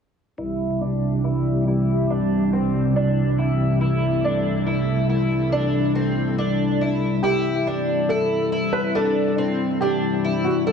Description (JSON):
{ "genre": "dream pop", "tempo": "70 BPM", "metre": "4/4", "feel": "straight", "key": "C major", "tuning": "A4 = 440 Hz", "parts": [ { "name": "string machine, cellos", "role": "sustained chords", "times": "0.4-10.7 s", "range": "C2 to A4", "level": "-21 LUFS", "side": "equal", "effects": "ensemble chorus, low-pass filter" }, { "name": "fingerpicked twelve-string acoustic guitar", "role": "arpeggios", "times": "0.4-10.7 s", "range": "C4 to E4", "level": "-24 LUFS", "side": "left 2 dB", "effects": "analog chorus, low-pass filter, ping-pong delay" }, { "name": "felt-muted upright piano", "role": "melody", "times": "7.2-10.7 s", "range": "F#4 to B4", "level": "-23 LUFS", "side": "right 1 dB", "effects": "ping-pong delay" } ], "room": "wet scoring stage reverb, RT60 1.7 s, studio reverb", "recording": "dark, warm production", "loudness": "-19 LUFS", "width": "side -6 dB against mid", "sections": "0.4-7.2 A section; 7.2-10.7 B section", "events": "filter sweep 0.4-7.2", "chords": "0.4 C", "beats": "| 0.39 1.24 2.10 2.96 | 3.81 4.67 5.53 6.38 | 7.24 8.10 8.96 9.81 | 10.67" }